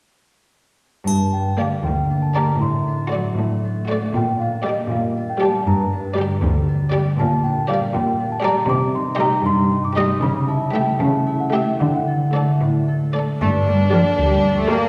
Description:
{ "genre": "cinematic, playful, whimsical film cue", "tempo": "78 BPM (dotted quarters)", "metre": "6/8", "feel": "straight", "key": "G minor", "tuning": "A4 = 435 Hz", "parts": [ { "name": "worn celesta", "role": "melody", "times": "1.1-12.6 s", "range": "Eb5 to Eb6", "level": "-26 LUFS", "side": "equal", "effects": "none" }, { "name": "concert harp", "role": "arpeggios", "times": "1.1-14.9 s", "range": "G2 to A4", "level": "-25 LUFS", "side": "equal", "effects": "none" }, { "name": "rich symphonic cello section", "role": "bass", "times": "1.1-14.9 s", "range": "D2 to Bb3", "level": "-24 LUFS", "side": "equal", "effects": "none" }, { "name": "triangle", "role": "percussion", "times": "1.1-2.1 s", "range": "none", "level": "-34 LUFS", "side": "equal", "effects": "none" }, { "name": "rich chamber violin section", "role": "melody", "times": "1.6-14.9 s", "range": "D5 to E5", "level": "-33 LUFS", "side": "equal", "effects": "none" }, { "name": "rich chamber violin section", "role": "second line", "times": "1.6-14.9 s", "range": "D4 to A4", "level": "-29 LUFS", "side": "equal", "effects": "none" }, { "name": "rich chamber viola section", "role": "accompaniment", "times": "1.6-14.9 s", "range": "G3 to Bb4", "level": "-28 LUFS", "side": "equal", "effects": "none" }, { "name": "rich studio double bass section", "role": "bass", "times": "13.4-14.8 s", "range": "D2 to G2", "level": "-26 LUFS", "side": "equal", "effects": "none" } ], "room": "wet scoring stage reverb, RT60 1.9 s", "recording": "recorded in a church or concert hall, lossy compression artefacts", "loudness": "-19 LUFS", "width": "mono", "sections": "1.1-13.4 A section; 13.4-14.9 A section", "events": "none", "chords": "1.1 Gm; 2.6 D7/A; 4.2 Gm/Bb; 5.7 Gm; 7.2 Gm/Bb; 8.7 Cm; 10.2 A7/C#; 11.8 D; 13.4 Gm" }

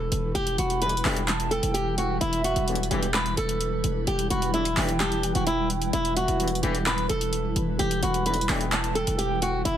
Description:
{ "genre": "hip hop, trap", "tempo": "129 BPM", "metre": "4/4", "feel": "half-time", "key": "E minor", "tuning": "A4 = 441 Hz", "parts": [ { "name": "flamenco guitar", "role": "melody", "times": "0.0-9.8 s", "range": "E4 to B4", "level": "-27 LUFS", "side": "equal", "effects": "low-pass filter" }, { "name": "granular cloud pad", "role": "sustained chords", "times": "0.0-9.8 s", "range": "E3 to B4", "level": "-32 LUFS", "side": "equal", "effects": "built-in reverb" }, { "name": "hard-hitting 808-style bass", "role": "bass", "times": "0.0-9.8 s", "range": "E1", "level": "-29 LUFS", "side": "equal", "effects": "none" }, { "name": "trap drum kit", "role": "drums", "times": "0.1-9.8 s", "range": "handclaps, hi-hat", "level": "-29 LUFS", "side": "equal", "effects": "overdrive" }, { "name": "gliding portamento lead", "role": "second line", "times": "0.6-9.8 s", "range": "E5 to B5", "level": "-34 LUFS", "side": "right 5 dB", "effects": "chorus, tape echo" }, { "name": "clear brass ensemble", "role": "stabs", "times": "0.8-8.6 s", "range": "B1 to E3", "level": "-34 LUFS", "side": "left 3 dB", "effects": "tape echo" } ], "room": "little or no reverb", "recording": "dense, heavily limited modern master, vinyl crackle", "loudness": "-23 LUFS", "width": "side -10 dB against mid", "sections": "0.0-9.8 A section", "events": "none", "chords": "0.0 Em" }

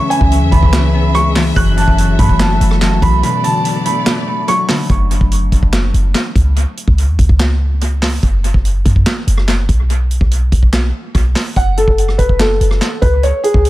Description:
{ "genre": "hip hop, trap", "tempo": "144 BPM", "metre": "4/4", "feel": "half-time", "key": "F# minor", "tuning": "A4 = 440 Hz", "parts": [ { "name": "dark grand piano", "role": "melody", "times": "0.0-4.7, 11.6-13.7 s", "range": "G#4 to F#6", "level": "-17 LUFS", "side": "right 1 dB", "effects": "dub echo" }, { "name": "concert harp", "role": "accompaniment", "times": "0.0-7.6 s", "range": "F#2 to B3", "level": "-18 LUFS", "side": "left 3 dB", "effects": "dub echo" }, { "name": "warm studio string section", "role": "sustained chords", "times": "0.0-4.9 s", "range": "F#3 to E5", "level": "-23 LUFS", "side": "left 2 dB", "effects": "none" }, { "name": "vintage drum kit", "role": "drums", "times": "0.1-13.7 s", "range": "handclaps, hi-hat, kick drum, rim click, snare drum", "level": "-16 LUFS", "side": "equal", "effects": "dub echo" }, { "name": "clean 808-style bass", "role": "bass", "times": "0.2-13.7 s", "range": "F#1 to F#2", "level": "-13 LUFS", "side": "equal", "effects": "none" } ], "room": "studio ambience", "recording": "echo-heavy mix", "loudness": "-11 LUFS", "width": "side -16 dB against mid", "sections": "0.0-4.9 A section; 4.9-13.7 B section", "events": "break 3.2-4.9", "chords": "0.0 C#m7; 1.6 F#m7; 3.2 Bm7; 4.9 F#5; 6.6 N.C.; 8.2 F#sus4; 9.9 N.C.; 11.6 F#m" }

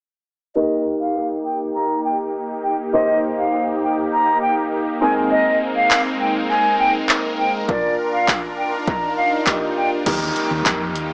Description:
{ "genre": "dance-pop", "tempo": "101 BPM", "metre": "4/4", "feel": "straight", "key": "Eb major", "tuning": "A4 = 444 Hz", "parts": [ { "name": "breathy silver concert flute", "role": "melody", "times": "0.6-9.9 s", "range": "D5 to Bb5", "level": "-23 LUFS", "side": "equal", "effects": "sidechain pumping, low-pass filter, dub echo" }, { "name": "warm concert grand piano", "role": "accompaniment", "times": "0.6-10.8 s", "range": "Bb3 to C5", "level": "-27 LUFS", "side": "equal", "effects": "sidechain pumping, low-pass filter, dub echo" }, { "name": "supersaw chords", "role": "sustained chords", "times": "0.6-11.1 s", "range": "Ab3 to Bb4", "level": "-27 LUFS", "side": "equal", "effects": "sidechain pumping, low-pass filter" }, { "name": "swell and downlifter", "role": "sound effects", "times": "8.7-11.1 s", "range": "none", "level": "-31 LUFS", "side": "equal", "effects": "none" }, { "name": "punchy analog drum machine", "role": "drums", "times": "5.9-11.1 s", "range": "crash cymbal, handclaps, hi-hat, kick drum", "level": "-23 LUFS", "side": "equal", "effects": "dub echo" }, { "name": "vintage muted fingered electric bass", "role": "bass", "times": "10.1-11.1 s", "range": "Eb2 to F2", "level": "-31 LUFS", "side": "equal", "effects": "sidechain pumping" } ], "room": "wet plate reverb, RT60 1.3 s, digital ambience", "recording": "echo-heavy mix, small speaker sound", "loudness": "-20 LUFS", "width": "mono", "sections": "0.6-10.1 A section; 10.1-11.1 B section", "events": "filter sweep 0.6-10.1; swell 8.7-10.1", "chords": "0.6 Eb; 5.0 Abadd9; 7.7 Bb; 10.1 Eb" }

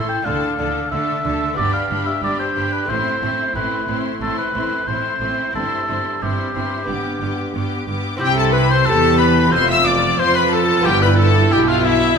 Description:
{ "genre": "classical, baroque-style concerto movement with solo episodes", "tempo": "91 BPM", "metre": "4/4", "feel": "straight", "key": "C major", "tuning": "A4 = 441 Hz", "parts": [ { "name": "rich chamber violin section", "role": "melody", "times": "0.0-12.2 s", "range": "E5 to E6", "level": "-23 LUFS", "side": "left 4 dB", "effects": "none" }, { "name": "warm oboe", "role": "melody", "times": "0.0-12.2 s", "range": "E4 to G5", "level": "-21 LUFS", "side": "left 1 dB", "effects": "none" }, { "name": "rich chamber violin section", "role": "second line", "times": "0.0-12.2 s", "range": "E4 to E5", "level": "-25 LUFS", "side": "left 5 dB", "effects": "none" }, { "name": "lute", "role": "accompaniment", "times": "0.0-12.2 s", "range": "F2 to A4", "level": "-28 LUFS", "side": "equal", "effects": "none" }, { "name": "rich studio viola section", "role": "accompaniment", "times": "0.0-12.2 s", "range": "B3 to G4", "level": "-24 LUFS", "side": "right 1 dB", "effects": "none" }, { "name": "warm chamber cello section", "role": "bass", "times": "0.3-12.2 s", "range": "F2 to F3", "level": "-24 LUFS", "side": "right 2 dB", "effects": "none" }, { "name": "warm chamber double bass section", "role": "bass", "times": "0.3-12.2 s", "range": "F1 to F2", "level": "-24 LUFS", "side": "right 4 dB", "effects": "none" } ], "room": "wet concert hall reverb, RT60 2.1 s", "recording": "minimal, uncompressed stereo recording", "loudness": "-16 LUFS", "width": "side -6 dB against mid", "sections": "0.0-8.2 A section; 8.2-12.2 B section", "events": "none", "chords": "0.3 Dm; 1.6 G; 2.9 Am; 5.5 C/G; 6.9 G; 8.2 C; 9.5 F; 10.9 G7" }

